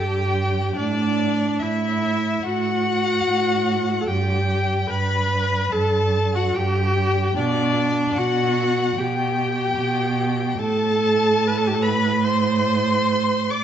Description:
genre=classical, slow romantic movement for string quartet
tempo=73 BPM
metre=4/4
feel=rubato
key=G major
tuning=A4 = 435 Hz
part: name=warm violin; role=melody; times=0.0-13.6 s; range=D5 to D6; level=-28 LUFS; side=left 10 dB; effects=none
part: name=clear violin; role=second line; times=0.0-13.6 s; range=D5 to D6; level=-28 LUFS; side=left 3 dB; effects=none
part: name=clear viola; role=accompaniment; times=0.0-13.6 s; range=D4 to D5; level=-23 LUFS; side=equal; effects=none
part: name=warm cello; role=bass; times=0.0-13.6 s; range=G2 to B2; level=-23 LUFS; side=right 4 dB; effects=none
room=moderate scoring stage reverb, RT60 1.9 s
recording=nothing above 7.8 kHz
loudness=-18 LUFS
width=side -9 dB against mid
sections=0.0-13.6 A section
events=none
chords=0.0 N.C.; 0.8 D/A; 4.1 G; 7.4 G/B; 10.6 Amadd9

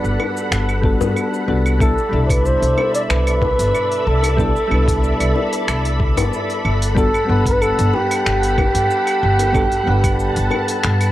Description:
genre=sunset chillout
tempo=93 BPM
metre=4/4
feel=straight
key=G major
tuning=A4 = 440 Hz
part: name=dark flugelhorn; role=melody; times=0.0-11.1 s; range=G4 to D5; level=-20 LUFS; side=right 1 dB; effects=cassette tape, analog delay, shimmer reverb
part: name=soft electric-piano-like synth keys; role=accompaniment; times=0.0-11.1 s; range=B2 to F#5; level=-23 LUFS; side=equal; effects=chorus, auto-pan, cassette tape, shimmer reverb
part: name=soft string machine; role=sustained chords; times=0.0-11.1 s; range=A4 to B5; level=-24 LUFS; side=equal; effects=ensemble chorus, cassette tape, shimmer reverb
part: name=upright bass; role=bass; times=0.0-11.1 s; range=G1 to G2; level=-19 LUFS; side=equal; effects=none
part: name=smooth R&B drum kit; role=drums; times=0.0-11.1 s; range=claves, finger snaps, hi-hat, shaker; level=-25 LUFS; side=right 1 dB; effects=none
part: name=bongos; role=percussion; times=0.2-10.6 s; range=none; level=-27 LUFS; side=left 10 dB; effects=none
part: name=electronic kick drum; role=drums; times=0.8-10.2 s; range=none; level=-20 LUFS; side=equal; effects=none
room=light reverb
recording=home recording on cassette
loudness=-15 LUFS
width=side -14 dB against mid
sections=0.0-11.1 A section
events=none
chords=0.0 Gmaj9; 1.8 Cmaj13; 6.6 Gmaj9

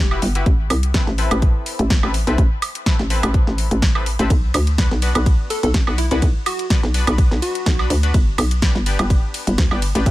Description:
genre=bass house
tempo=125 BPM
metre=4/4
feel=swing 54% on 16ths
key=unclear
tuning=A4 = 439 Hz
part: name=plucky unison lead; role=melody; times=0.0-0.2, 5.5-8.1 s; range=E4 to A4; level=-27 LUFS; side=left 1 dB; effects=ping-pong delay
part: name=band-passed chord stab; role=stabs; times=0.0-10.1 s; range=B3 to B4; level=-28 LUFS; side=left 3 dB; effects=chorus, sidechain pumping, ping-pong delay
part: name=hollow knocking FM bass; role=bass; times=0.0-10.1 s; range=E1 to G2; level=-19 LUFS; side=equal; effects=tube saturation, sidechain pumping
part: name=house drum kit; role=drums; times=0.1-10.1 s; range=hi-hat, ride cymbal, snare drum, woodblock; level=-24 LUFS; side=right 1 dB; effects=none
part: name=electronic kick drum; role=drums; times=0.5-10.1 s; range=none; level=-17 LUFS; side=equal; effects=none
room=digital ambience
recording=none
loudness=-15 LUFS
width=side -16 dB against mid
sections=0.0-10.1 A section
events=none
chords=0.5 Amadd9; 4.3 Bm; 8.1 G

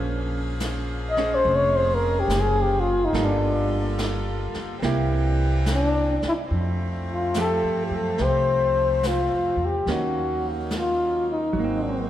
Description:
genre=jazz ballad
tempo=71 BPM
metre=4/4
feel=swing 67% on 8ths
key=unclear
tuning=A4 = 445 Hz
part: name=hollow-body jazz guitar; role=accompaniment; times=0.0-12.1 s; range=Eb3 to C5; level=-30 LUFS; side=right 4 dB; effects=none
part: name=edgy saxophone section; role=sustained chords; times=0.0-12.1 s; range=D3 to E5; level=-34 LUFS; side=left 1 dB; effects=none
part: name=upright bass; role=bass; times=0.0-12.1 s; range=F1 to G2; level=-26 LUFS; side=equal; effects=none
part: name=jazz brush drum kit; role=drums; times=0.6-12.1 s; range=brushed snare drum, hi-hat, snare drum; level=-35 LUFS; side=equal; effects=none
part: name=breathy flugelhorn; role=melody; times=1.1-12.1 s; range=D4 to Eb5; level=-23 LUFS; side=left 2 dB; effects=none
room=wet church reverb, RT60 3.4 s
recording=recorded in a church or concert hall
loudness=-21 LUFS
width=side -12 dB against mid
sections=0.0-6.5 A section; 6.5-12.1 B section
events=flugelhorn solo 0.0-6.5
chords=0.0 Bbm9; 3.1 Gm9; 4.8 C7; 6.5 Fmaj9; 9.9 Ebm7; 11.5 Ab9

